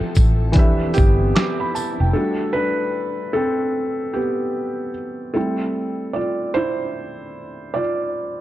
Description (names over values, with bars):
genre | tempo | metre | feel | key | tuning
lo-fi hip hop | 75 BPM | 4/4 | swing 62% on 16ths | unclear | A4 = 439 Hz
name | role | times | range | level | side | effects
felt-muted upright piano | accompaniment | 0.0-8.4 s | E3 to D6 | -21 LUFS | right 1 dB | low-pass filter
granular cloud pad | sustained chords | 0.0-2.1 s | F3 to A4 | -31 LUFS | left 1 dB | built-in reverb, low-pass filter
vintage muted fingered electric bass | bass | 0.0-2.1 s | E1 to A1 | -20 LUFS | equal | none
boom bap sampler-style drum kit | drums | 0.2-2.0 s | hi-hat, kick drum, shaker, snare drum | -17 LUFS | equal | vintage 12-bit sampler grit
tambourine | percussion | 0.2-2.0 s | none | -38 LUFS | left 10 dB | none
room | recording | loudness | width
light reverb | dark, warm production | -18 LUFS | side -14 dB against mid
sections
0.0-2.2 A section; 2.2-8.4 B section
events
felt piano solo 2.2-8.4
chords
0.0 Fmaj9; 0.6 Em7; 2.2 Gmaj9; 5.4 Fmaj9